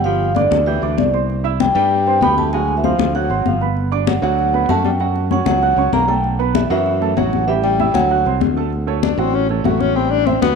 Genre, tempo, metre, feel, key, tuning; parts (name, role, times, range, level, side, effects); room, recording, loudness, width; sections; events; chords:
Afro-Cuban jazz; 194 BPM; 4/4; straight; G major; A4 = 440 Hz
vibraphone with soft mallets; melody; 0.0-8.4 s; D5 to B5; -19 LUFS; right 2 dB
breathy tenor saxophone; second line; 0.0-10.6 s; D3 to D4; -22 LUFS; left 10 dB
modern bright fingered electric bass; bass; 0.0-10.6 s; G1 to G2; -20 LUFS; right 1 dB
warm baby grand piano; accompaniment; 0.1-10.6 s; F#3 to G6; -22 LUFS; right 13 dB
congas; percussion; 0.1-10.6 s; -22 LUFS; left 11 dB
moderate echo chamber reverb, RT60 2.2 s; 1960s-style stereo with parts hard left and right; -14 LUFS; side -5 dB against mid
0.0-8.7 A section; 8.7-10.6 B section
tenor saxophone solo 8.7-10.6
0.1 G5; 1.3 Cadd9; 2.5 D7#9; 3.8 Gmaj7; 5.0 F#5; 6.2 B5; 7.5 A5; 8.1 D7; 8.7 Dmaj7; 10.0 Am7